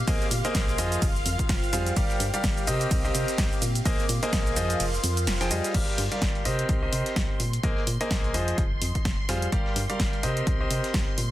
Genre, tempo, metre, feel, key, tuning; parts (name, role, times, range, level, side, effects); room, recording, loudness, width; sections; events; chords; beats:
piano house; 127 BPM; 4/4; swing 57% on 16ths; C minor; A4 = 440 Hz
string machine, violins; sustained chords; 0.0-11.3 s; F5 to C6; -38 LUFS; equal; ensemble chorus, sidechain pumping
solid FM bass; bass; 0.0-11.3 s; F1 to C3; -30 LUFS; equal; sidechain pumping
warbly tape-like pad; texture; 0.0-5.7 s; C4 to D6; -36 LUFS; equal; chorus, built-in reverb, sidechain pumping
bright grand piano; riff; 0.1-11.2 s; F3 to G5; -29 LUFS; equal; sidechain pumping, tape echo
dusty soul sampler-style drum kit; drums; 0.1-11.3 s; hi-hat, snare drum; -40 LUFS; right 1 dB
electronic kick drum; drums; 0.1-11.1 s; -27 LUFS; equal
punchy analog drum machine; drums; 0.1-11.3 s; crash cymbal, hi-hat, ride cymbal, shaker, snare drum; -31 LUFS; equal; overdrive
digital ambience; dense, heavily limited modern master; -23 LUFS; side -14 dB against mid
0.0-5.7 A section; 5.7-11.3 B section
drop 0.0-5.7; kick drops out 4.8-5.7
0.0 Bb9sus4; 0.8 Fm7; 2.0 Gm7; 2.7 Cm7; 3.6 Bb9sus4; 4.6 Fm7; 5.7 Gm7; 6.5 Cm7; 7.4 Bb9sus4; 8.3 Fm7; 9.5 Gm7; 10.2 Cm7
| 0.08 0.55 1.02 1.49 | 1.97 2.44 2.91 3.38 | 3.85 4.33 4.80 5.27 | 5.75 6.22 6.69 7.16 | 7.63 8.11 8.58 9.05 | 9.52 10.00 10.47 10.94